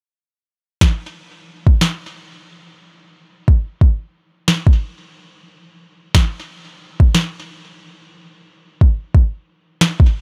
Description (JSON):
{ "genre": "IDM", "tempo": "90 BPM", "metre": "4/4", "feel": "swing 56% on 16ths", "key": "none", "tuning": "none", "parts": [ { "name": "electronic kick drum", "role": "drums", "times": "0.8-10.1 s", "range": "none", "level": "-13 LUFS", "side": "equal", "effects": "overdrive" }, { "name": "electronic snare drum", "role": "drums", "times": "0.8-10.0 s", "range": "none", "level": "-18 LUFS", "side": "equal", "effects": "none" } ], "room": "little or no reverb", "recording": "none", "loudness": "-17 LUFS", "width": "mono", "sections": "0.0-10.2 A section", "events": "none", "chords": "none" }